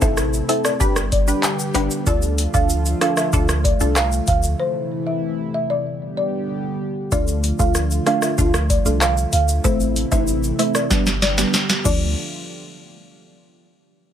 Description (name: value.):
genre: dancehall.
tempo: 95 BPM.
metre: 4/4.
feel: straight.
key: D dorian.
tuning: A4 = 436 Hz.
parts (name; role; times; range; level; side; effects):
folk marimba with soft mallets; melody; 0.0-12.1 s; C5 to F5; -24 LUFS; right 1 dB; ping-pong delay.
punchy chord stab; accompaniment; 0.0-12.1 s; F3 to B4; -23 LUFS; equal; chorus, phaser.
warm analog pad; sustained chords; 0.0-12.1 s; C3 to G4; -27 LUFS; equal; chorus, sidechain pumping.
punchy sub bass; bass; 0.0-12.1 s; G1 to D2; -21 LUFS; equal; none.
booming analog drum machine; drums; 0.0-12.0 s; crash cymbal, handclaps, hi-hat, kick drum, rim click, shaker, snare drum; -21 LUFS; equal; none.
timbales and tube shaker; percussion; 0.0-12.1 s; none; -30 LUFS; left 6 dB; none.
room: digital ambience.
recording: none.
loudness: -17 LUFS.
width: side -9 dB against mid.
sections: 0.0-7.1 A section; 7.1-12.2 B section; 12.2-14.1 C section.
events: break 4.6-7.1; drum fill 10.9-12.2.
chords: 0.0 Am; 0.8 G; 2.1 Dm; 4.6 Am; 5.9 G; 7.1 Dm; 9.6 Am; 10.9 G; 11.9 Dm; 12.2 N.C..